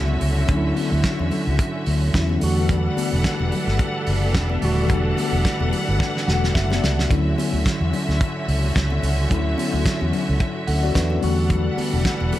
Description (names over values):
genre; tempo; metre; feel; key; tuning
disco; 109 BPM; 4/4; swing 56% on 16ths; D major; A4 = 442 Hz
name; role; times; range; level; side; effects
tine electric piano; accompaniment; 0.0-12.4 s; D3 to F#5; -25 LUFS; left 2 dB; medium stereo tremolo
rich studio string section; sustained chords; 0.0-12.4 s; D3 to F#5; -27 LUFS; equal; none
fingered electric bass; bass; 0.0-12.3 s; Eb1 to E2; -21 LUFS; equal; none
congas; percussion; 0.1-12.4 s; none; -32 LUFS; left 6 dB; none
warm soul drum kit; drums; 0.2-12.4 s; hi-hat, kick drum, snare drum; -24 LUFS; equal; none
room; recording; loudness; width
light reverb, small room ambience; none; -18 LUFS; side -14 dB against mid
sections
0.0-12.4 A section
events
drum fill 6.0-7.1; tine electric piano fill 6.0-7.1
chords
0.0 Dmaj9; 2.4 Em11; 7.1 Dmaj9; 11.2 Em11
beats
| 0.48 1.04 1.59 2.14 | 2.69 3.24 3.79 4.35 | 4.90 5.45 6.00 6.55 | 7.10 7.65 8.20 8.75 | 9.30 9.85 10.40 10.95 | 11.50 12.05